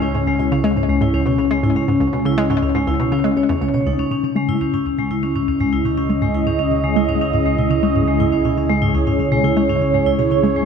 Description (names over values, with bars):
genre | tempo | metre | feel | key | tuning
ambient, sequencer-driven space music | 121 BPM | 4/4 | straight | C# minor | A4 = 441 Hz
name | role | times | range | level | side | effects
sweeping resonant pad | sustained chords | 0.0-10.7 s | C#3 to D#5 | -20 LUFS | right 3 dB | lush chorus
vibraphone with medium hard mallets | arpeggios | 0.0-10.6 s | G#3 to C#5 | -20 LUFS | left 4 dB | auto-pan, ping-pong delay
hollow square pluck | riff | 0.0-10.6 s | C#2 to G#3 | -21 LUFS | equal | chorus, ping-pong delay
round analog bass | bass | 0.0-10.7 s | C#2 | -27 LUFS | right 1 dB | none
room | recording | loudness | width
light reverb | none | -15 LUFS | side -6 dB against mid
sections
0.0-4.0 A section; 4.0-10.7 B section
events
filter sweep on synth arpeggio sound 4.0-10.7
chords
0.0 C#m; 4.0 C#madd9